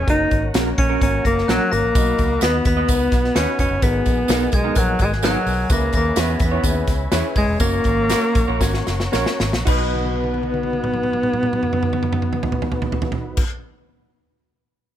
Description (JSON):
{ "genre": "uptempo 1960s-style soul", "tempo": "109-128 BPM", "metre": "4/4", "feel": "straight", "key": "B major", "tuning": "A4 = 438 Hz", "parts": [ { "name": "warm alto saxophone", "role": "melody", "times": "0.0-13.5 s", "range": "F#3 to D#4", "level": "-21 LUFS", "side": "left 1 dB", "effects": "none" }, { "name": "glockenspiel with hard plastic mallets", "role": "second line", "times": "0.0-13.5 s", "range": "B5 to D#7", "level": "-30 LUFS", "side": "left 2 dB", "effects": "none" }, { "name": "mellow tonewheel organ", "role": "sustained chords", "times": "0.0-13.4 s", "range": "B3 to C#6", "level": "-31 LUFS", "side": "left 2 dB", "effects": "chorus vibrato" }, { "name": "vintage muted fingered electric bass", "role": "bass", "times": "0.0-13.4 s", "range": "E1 to E2", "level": "-24 LUFS", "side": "equal", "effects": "none" }, { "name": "warm upright piano", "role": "accompaniment", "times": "0.1-13.5 s", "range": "B1 to D#5", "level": "-28 LUFS", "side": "left 2 dB", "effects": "none" }, { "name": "natural country drum kit", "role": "drums", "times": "0.1-13.5 s", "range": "crash cymbal, hi-hat, kick drum, snare drum, toms", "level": "-22 LUFS", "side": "equal", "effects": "none" }, { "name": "electric guitar through a small old amp", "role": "stabs", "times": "0.5-13.5 s", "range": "B3 to D#5", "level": "-27 LUFS", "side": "right 4 dB", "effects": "warbly pitch drift" }, { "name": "tambourine", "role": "percussion", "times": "2.0-13.5 s", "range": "none", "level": "-34 LUFS", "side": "right 5 dB", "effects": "none" } ], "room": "light reverb", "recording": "none", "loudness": "-17 LUFS", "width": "side -11 dB against mid", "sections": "0.0-9.7 A section; 9.7-14.1 B section", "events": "slowing down 5.7-9.7; drum fill 8.6-9.7, 9.9-13.4", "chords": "0.1 F#; 1.9 B; 3.8 G#madd9; 5.7 C#m7; 7.6 F#; 9.7 B" }